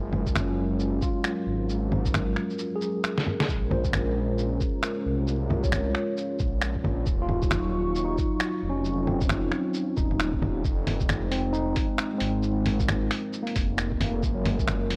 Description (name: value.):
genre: future garage.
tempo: 134 BPM.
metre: 4/4.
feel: swing 61% on 16ths.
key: Bb minor.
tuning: A4 = 440 Hz.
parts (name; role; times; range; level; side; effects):
dark analog pad; sustained chords; 0.0-15.0 s; Gb3 to Db6; -34 LUFS; equal; chorus, sidechain pumping.
swelling detuned saw bass; bass; 0.0-15.0 s; Eb1 to C2; -32 LUFS; equal; sidechain pumping.
lo-fi sampler-style drum kit; drums; 0.1-15.0 s; bongos, finger snaps, hi-hat, shaker, snare drum; -31 LUFS; equal; none.
electronic kick drum; drums; 0.3-14.7 s; none; -31 LUFS; equal; none.
tine electric piano; accompaniment; 0.4-15.0 s; Gb3 to Db5; -34 LUFS; equal; vintage 12-bit sampler grit, sidechain pumping, low-pass filter, analog delay.
room: light reverb, digital ambience.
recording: dry, gritty hardware recording.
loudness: -27 LUFS.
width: mono.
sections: 0.0-15.0 A section.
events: drum fill 3.1-3.5.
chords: 0.0 Gbmaj9; 3.5 Bbm7; 7.1 Ebm9; 10.6 Fm7; 14.2 Gbmaj9.